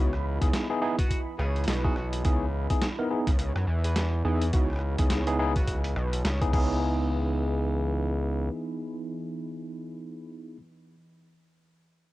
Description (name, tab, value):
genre	glitch hop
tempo	105 BPM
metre	4/4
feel	swing 59% on 16ths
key	C# minor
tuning	A4 = 441 Hz
part	tine electric piano	stabs	0.0-10.6 s	B3 to A#4	-30 LUFS	equal	overdrive, medium stereo tremolo, sidechain pumping, cassette tape, analog delay
part	gritty driven synth bass	bass	0.0-8.5 s	B1 to F#2	-28 LUFS	equal	tube saturation
part	deep dark ambient pad	texture	0.0-9.9 s	E3 to B5	-40 LUFS	right 3 dB	chorus, built-in reverb, sidechain pumping, cassette tape
part	boom bap sampler-style drum kit	drums	0.1-6.7 s	crash cymbal, hi-hat, rim click, snare drum	-34 LUFS	equal	cassette tape
part	electronic kick drum	drums	0.4-6.7 s	none	-26 LUFS	equal	cassette tape
part	overdriven harmonica	melody	1.0-5.8 s	B3 to B4	-40 LUFS	equal	cassette tape, analog delay
room	light reverb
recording	home recording on cassette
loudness	-25 LUFS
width	side -17 dB against mid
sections	0.0-6.8 A section; 6.8-9.1 B section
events	drop 0.0-6.8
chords	0.0 C#m9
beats	0.53 1.10 1.68 | 2.25 2.82 3.39 3.96 | 4.53 5.10 5.68 6.25 | 6.82 7.39 7.96 8.53